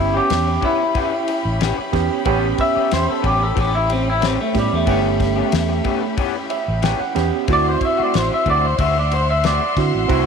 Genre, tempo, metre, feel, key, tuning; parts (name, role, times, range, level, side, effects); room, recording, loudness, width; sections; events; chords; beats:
straight-eighth soul blues; 92 BPM; 4/4; straight; A mixolydian; A4 = 440 Hz
electric guitar through a small old amp; melody; 0.0-9.8 s; G3 to E5; -20 LUFS; left 1 dB; spring reverb
overdriven reed electric piano; accompaniment; 0.0-10.3 s; B3 to G5; -22 LUFS; right 14 dB
warm chamber string section; sustained chords; 0.0-10.3 s; C#4 to C6; -28 LUFS; left 2 dB
fingered electric bass; bass; 0.0-10.3 s; G1 to D3; -21 LUFS; equal
electric guitar through a small old amp; stabs; 0.1-10.3 s; E3 to G4; -27 LUFS; left 11 dB; ensemble chorus
damped 70s drum kit; drums; 0.3-10.3 s; kick drum, ride cymbal, snare drum; -25 LUFS; left 3 dB
moderate plate reverb, RT60 2.9 s; 1960s-style stereo with parts hard left and right; -16 LUFS; side -6 dB against mid
0.0-10.3 A section
clean electric guitar solo 0.0-10.3; reed electric piano fill 6.2-7.5
0.0 A9; 7.5 D9
0.30 0.95 1.61 | 2.26 2.91 3.57 4.22 | 4.87 5.53 6.18 6.83 | 7.49 8.14 8.79 9.45 | 10.10